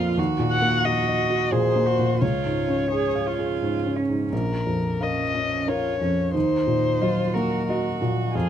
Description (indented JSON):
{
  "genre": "neoclassical piano and strings",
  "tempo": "89 BPM",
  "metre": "3/4",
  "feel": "rubato",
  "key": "unclear",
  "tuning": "A4 = 440 Hz",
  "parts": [
    { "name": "muted violin", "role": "melody", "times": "0.0-8.5 s", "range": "Ab4 to Gb5", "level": "-26 LUFS", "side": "left 4 dB", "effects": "none" },
    { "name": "muted cello", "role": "second line", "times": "0.0-8.5 s", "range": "Db4 to Ab4", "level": "-28 LUFS", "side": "right 8 dB", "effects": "none" },
    { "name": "felt-muted upright piano", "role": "accompaniment", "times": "0.0-8.5 s", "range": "Bb1 to F5", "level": "-24 LUFS", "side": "equal", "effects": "none" }
  ],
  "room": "light reverb",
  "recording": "close, detailed microphones",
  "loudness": "-21 LUFS",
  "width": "side -10 dB against mid",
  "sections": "0.0-4.3 A section; 4.3-8.5 B section",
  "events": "none",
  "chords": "0.2 Ebm; 2.2 Db; 4.3 Bbm; 6.3 Ebm"
}